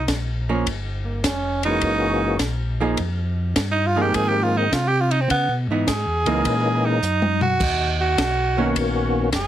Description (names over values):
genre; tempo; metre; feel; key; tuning
soul jazz organ trio; 104 BPM; 4/4; swing 68% on 8ths; unclear; A4 = 442 Hz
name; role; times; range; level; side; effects
growling tenor saxophone; melody; 0.0-9.5 s; Bb3 to Ab4; -22 LUFS; right 3 dB; none
mellow tonewheel organ; bass; 0.0-9.5 s; F1 to Db3; -24 LUFS; equal; slow rotary speaker
compact cocktail drum kit; drums; 0.1-9.5 s; crash cymbal, hi-hat, kick drum, ride cymbal, snare drum, toms; -26 LUFS; left 1 dB; none
archtop guitar, miked and amplified; accompaniment; 0.5-8.7 s; D#3 to Ab4; -24 LUFS; right 3 dB; none
percussive tonewheel organ; melody; 1.7-9.3 s; Eb3 to Gb4; -23 LUFS; left 2 dB; slow rotary speaker, overdrive, chorus vibrato
room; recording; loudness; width
light reverb; heavily compressed radio sound, multiband compression; -19 LUFS; side -11 dB against mid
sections
0.0-9.5 A section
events
tenor saxophone solo 0.0-9.5; drum fill 7.0-7.6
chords
0.0 Eb7sus2 (rootless); 0.7 Gm7b5; 1.8 Gb9; 3.0 Fm11; 5.3 Dbm9; 6.4 Gb13; 7.6 Bmaj9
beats
0.09 | 0.67 1.25 1.83 2.40 | 2.98 3.56 4.14 4.72 | 5.29 5.87 6.45 7.03 | 7.60 8.18 8.76 9.33